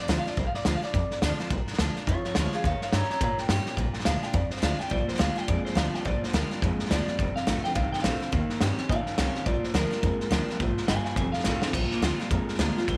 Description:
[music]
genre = rockabilly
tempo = 211 BPM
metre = 4/4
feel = swing 60% on 8ths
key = Bb mixolydian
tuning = A4 = 440 Hz
[part]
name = electric guitar through a small old amp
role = melody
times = 0.0-13.0 s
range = Bb3 to Bb5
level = -35 LUFS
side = equal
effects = subtle chorus, tape echo
[part]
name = picked steel-string acoustic guitar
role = accompaniment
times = 0.0-13.0 s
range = F2 to G4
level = -36 LUFS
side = equal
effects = none
[part]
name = upright bass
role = bass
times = 0.1-13.0 s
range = F1 to Bb2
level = -32 LUFS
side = equal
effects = none
[part]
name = vintage drum kit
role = drums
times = 0.1-13.0 s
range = crash cymbal, hi-hat, kick drum, snare drum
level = -32 LUFS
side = equal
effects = none
[part]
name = electric guitar through a small old amp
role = riff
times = 4.9-13.0 s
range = F2 to Db4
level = -35 LUFS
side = equal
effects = spring reverb
[sound]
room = light reverb, small room ambience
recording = none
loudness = -27 LUFS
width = mono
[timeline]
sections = 0.0-11.7 A section; 11.7-13.0 B section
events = clean electric guitar solo 0.0-11.7; drum fill 11.5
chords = 0.0 Bb7; 2.6 Eb7; 3.8 Bb7; 7.2 F7; 8.3 Eb7; 9.5 Bb7; 11.2 F7; 11.7 Bb7

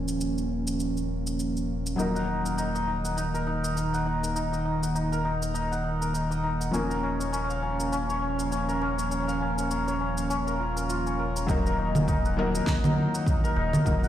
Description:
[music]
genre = organic downtempo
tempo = 101 BPM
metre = 4/4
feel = swing 58% on 16ths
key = Eb minor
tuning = A4 = 440 Hz
[part]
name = felt-muted upright piano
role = accompaniment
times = 0.0-14.1 s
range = F3 to Bb4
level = -32 LUFS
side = left 3 dB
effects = sidechain pumping, ping-pong delay
[part]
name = airy breathy pad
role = sustained chords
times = 0.0-14.1 s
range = Eb3 to Eb4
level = -31 LUFS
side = equal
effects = chorus, sidechain pumping
[part]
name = warm sub bass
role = bass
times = 0.0-14.1 s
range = Eb1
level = -32 LUFS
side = equal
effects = tube saturation, sidechain pumping
[part]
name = electronic cabasa, congas and snare drum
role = drums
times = 0.1-14.1 s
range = none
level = -32 LUFS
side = right 1 dB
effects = overdrive
[part]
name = santur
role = arpeggios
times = 2.0-14.1 s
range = Db4 to Bb5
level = -30 LUFS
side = left 1 dB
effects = ping-pong delay
[part]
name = electronic kick drum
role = drums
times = 11.5-14.0 s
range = none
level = -27 LUFS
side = equal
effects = overdrive
[sound]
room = moderate echo chamber reverb, RT60 2.7 s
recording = played on a big sound system in a bare room, stone room reverb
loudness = -25 LUFS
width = side -11 dB against mid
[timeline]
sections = 0.0-11.5 A section; 11.5-14.1 B section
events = filter sweep on analog synth pad 0.0-11.5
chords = 0.0 Bbm/Eb; 2.0 Ebm; 6.7 Bbm/Eb

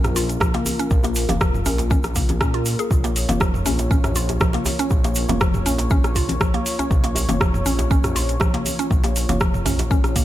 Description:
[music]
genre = afro house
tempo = 120 BPM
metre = 4/4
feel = swing 53% on 16ths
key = Bb minor pentatonic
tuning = A4 = 439 Hz
[part]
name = dark analog pad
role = sustained chords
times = 0.0-10.2 s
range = Bb3 to Db5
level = -29 LUFS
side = left 1 dB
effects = chorus, sidechain pumping
[part]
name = smooth gliding synth bass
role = bass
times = 0.0-10.2 s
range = F1 to Bb2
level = -24 LUFS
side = equal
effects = sidechain pumping
[part]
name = deep house drum kit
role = drums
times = 0.0-10.2 s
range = hi-hat, rim click, toms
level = -25 LUFS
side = equal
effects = none
[part]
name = djembe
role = percussion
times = 0.0-10.0 s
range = none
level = -30 LUFS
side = right 2 dB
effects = none
[part]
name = tube shaker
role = percussion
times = 0.0-10.2 s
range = none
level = -33 LUFS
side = right 3 dB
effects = none
[part]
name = mallet-like synth pluck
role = arpeggios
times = 0.2-10.2 s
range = F3 to Ab4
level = -26 LUFS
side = equal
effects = chorus, sidechain pumping, ping-pong delay
[part]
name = electronic kick drum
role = drums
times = 0.4-10.2 s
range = none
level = -20 LUFS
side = equal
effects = none
[part]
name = congas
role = percussion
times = 0.5-10.2 s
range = none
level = -30 LUFS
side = left 3 dB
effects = none
[sound]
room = digital ambience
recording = none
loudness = -17 LUFS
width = side -14 dB against mid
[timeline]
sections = 0.0-10.2 A section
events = none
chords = 0.0 Bbm

